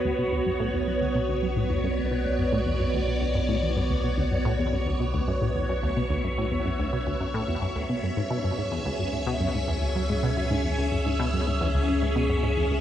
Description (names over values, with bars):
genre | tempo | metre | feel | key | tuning
ambient, sequencer-driven space music | 109 BPM | 4/4 | straight | B dorian | A4 = 444 Hz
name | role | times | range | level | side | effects
phased string machine | sustained chords | 0.0-12.8 s | B3 to E5 | -28 LUFS | equal | ensemble chorus, phaser, shimmer reverb
tight sequenced synth | riff | 0.0-12.8 s | C#2 to B2 | -28 LUFS | equal | chorus, tape echo
warm sub bass | bass | 0.0-12.8 s | B1 to C#2 | -30 LUFS | equal | none
room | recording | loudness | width
wet plate reverb, RT60 2.5 s | echo-heavy mix, nothing above 11.0 kHz | -24 LUFS | side -11 dB against mid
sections
0.0-12.8 A section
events
none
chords
0.0 Bmadd9; 8.0 C#m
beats
0.33 0.88 | 1.43 1.98 2.53 3.08 | 3.63 4.18 4.73 5.28 | 5.83 6.38 6.93 7.48 | 8.03 8.58 9.13 9.68 | 10.23 10.78 11.33 11.88 | 12.44